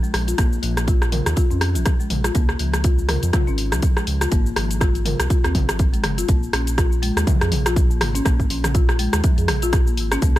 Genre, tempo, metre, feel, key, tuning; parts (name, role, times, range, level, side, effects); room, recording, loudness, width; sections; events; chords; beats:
afro house; 122 BPM; 4/4; swing 57% on 16ths; Bb minor; A4 = 441 Hz
folk marimba with medium mallets; arpeggios; 0.0-10.3 s; F3 to Bb4; -26 LUFS; left 3 dB; sidechain pumping, ping-pong delay
house drum kit; drums; 0.0-10.4 s; hi-hat, rim click, shaker, toms; -24 LUFS; equal
round analog bass; bass; 0.1-10.4 s; Gb1 to F2; -23 LUFS; equal; sidechain pumping
electronic kick drum; drums; 0.4-10.3 s; -18 LUFS; equal
digital ambience; -17 LUFS; side -15 dB against mid
0.0-6.3 A section; 6.3-10.4 B section
drop 6.3-10.4
0.0 Bb5; 2.4 Db; 4.3 Ab; 6.3 Bb7(no3)
| 0.39 0.88 1.37 1.86 | 2.35 2.84 3.34 3.83 | 4.32 4.81 5.30 5.79 | 6.29 6.78 7.27 7.76 | 8.25 8.75 9.24 9.73 | 10.22